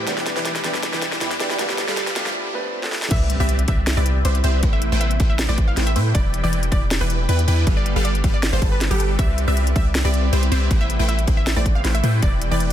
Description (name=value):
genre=future bass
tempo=158 BPM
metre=4/4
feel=half-time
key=C major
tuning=A4 = 441 Hz
part: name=warm concert grand piano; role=accompaniment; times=0.0-3.1 s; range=E3 to B4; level=-29 LUFS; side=right 1 dB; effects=sidechain pumping, ping-pong delay
part: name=shimmering ambient pad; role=sustained chords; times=0.0-12.7 s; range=C3 to D6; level=-32 LUFS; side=equal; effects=chorus, built-in reverb, sidechain pumping
part: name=supersaw stab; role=riff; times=0.0-12.7 s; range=E3 to A5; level=-25 LUFS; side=equal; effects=phaser, sidechain pumping
part: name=long sustained 808-style bass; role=bass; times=0.0-12.7 s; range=E1 to A2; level=-20 LUFS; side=equal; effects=sidechain pumping
part: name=riser, swell and impact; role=sound effects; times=0.0-4.6 s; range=none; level=-30 LUFS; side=equal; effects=none
part: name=trap drum kit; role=drums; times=0.1-12.7 s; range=crash cymbal, hi-hat, snare drum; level=-25 LUFS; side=equal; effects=high-pass filter on snare, high-pass filter on hats, high-pass filter on cymbals
part: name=wide unison pluck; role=melody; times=3.1-12.7 s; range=G4 to F5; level=-28 LUFS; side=right 1 dB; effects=sidechain pumping, dub echo
part: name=electronic kick drum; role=drums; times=3.1-12.3 s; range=none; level=-19 LUFS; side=equal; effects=none
room=light reverb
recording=dense, heavily limited modern master, high-pass filter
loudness=-17 LUFS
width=side -11 dB against mid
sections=0.0-3.1 A section; 3.1-12.7 B section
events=build-up 0.0-3.1; drum fill 0.0-2.4, 2.8; riser 0.0-2.4; filter sweep on supersaw synth 0.0-3.1; break 2.4-3.1; swell 2.4-3.1; drop 3.1-12.7; impact 3.1-4.6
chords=0.1 Em7; 1.6 G9; 3.1 Cmaj7; 4.6 Am7; 6.2 Em7; 7.7 G9; 9.2 Cmaj7; 10.7 Am7; 12.2 Em7